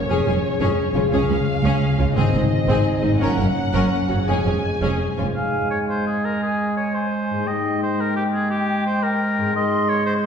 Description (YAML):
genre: cinematic, heroic adventure film score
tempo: 115 BPM (dotted quarters)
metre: 6/8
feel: straight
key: unclear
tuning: A4 = 439 Hz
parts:
  - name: rich symphonic violin section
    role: melody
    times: 0.0-5.2 s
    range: Db5 to Ab5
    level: -29 LUFS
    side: left 3 dB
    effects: none
  - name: warm French horn section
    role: sustained chords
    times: 0.0-5.2 s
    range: Ab3 to Ab4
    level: -26 LUFS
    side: left 2 dB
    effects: none
  - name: concert harp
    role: arpeggios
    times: 0.0-10.3 s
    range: F2 to Ab4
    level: -26 LUFS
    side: left 2 dB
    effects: none
  - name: rich studio violin section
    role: second line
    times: 0.1-5.3 s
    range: Eb4 to Bb4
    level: -29 LUFS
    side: left 2 dB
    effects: none
  - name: rich symphonic viola section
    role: accompaniment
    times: 0.1-5.3 s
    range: C4 to Db4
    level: -28 LUFS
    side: right 1 dB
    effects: none
  - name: clear symphonic double bass section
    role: bass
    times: 0.1-5.3 s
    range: F1 to Db2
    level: -25 LUFS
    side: right 2 dB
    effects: none
  - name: rich symphonic cello section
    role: bass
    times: 0.1-5.3 s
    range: Db2 to Ab2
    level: -25 LUFS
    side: right 2 dB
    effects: none
  - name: timpani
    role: percussion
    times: 2.2-2.6 s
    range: Ab2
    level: -26 LUFS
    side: equal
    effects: none
  - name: clear oboe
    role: second line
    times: 5.3-10.1 s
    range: G4 to F5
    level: -24 LUFS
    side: equal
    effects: none
  - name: concert flute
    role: second line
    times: 5.4-10.3 s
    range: G5 to C6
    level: -28 LUFS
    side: left 2 dB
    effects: none
  - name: warm clarinet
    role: second line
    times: 5.4-10.3 s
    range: Ab3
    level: -24 LUFS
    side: right 2 dB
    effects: none
room: wet scoring stage reverb, RT60 1.7 s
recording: heard from further back in the room, nothing above 10.7 kHz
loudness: -18 LUFS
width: side -7 dB against mid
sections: 0.0-5.4 A section; 5.4-10.3 B section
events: build-up 0.0-5.4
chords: 0.1 Db/F; 1.1 Db; 2.2 Ab; 3.2 Gb; 4.3 Db/F; 5.4 Fm/Ab (rootless); 7.5 Eb/Ab; 9.6 Ab